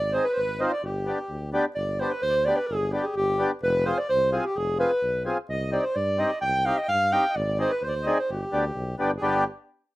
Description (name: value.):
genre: klezmer.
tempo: 129 BPM.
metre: 2/4.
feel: straight.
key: G phrygian dominant.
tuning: A4 = 441 Hz.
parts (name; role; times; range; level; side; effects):
dark clarinet; melody; 0.0-9.4 s; G4 to G5; -26 LUFS; right 1 dB; none.
accordion; second line; 0.0-9.4 s; G4 to G5; -31 LUFS; equal; none.
mellow tuba; bass; 0.0-9.4 s; F1 to G2; -32 LUFS; equal; none.
mellow accordion; accompaniment; 0.1-9.4 s; B3 to Ab4; -26 LUFS; left 1 dB; none.
room: light reverb.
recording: rough home demo mix.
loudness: -23 LUFS.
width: side -18 dB against mid.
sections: 0.0-1.8 A section; 1.8-9.2 A section.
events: none.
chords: 0.0 Ab; 0.8 G; 3.6 Fm; 5.5 Cm; 7.4 Ab; 8.3 G.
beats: 0.37 | 0.83 1.30 | 1.77 2.23 | 2.70 3.17 | 3.63 4.10 | 4.56 5.03 | 5.50 5.96 | 6.43 6.90 | 7.36 7.83 | 8.30 8.76 | 9.23.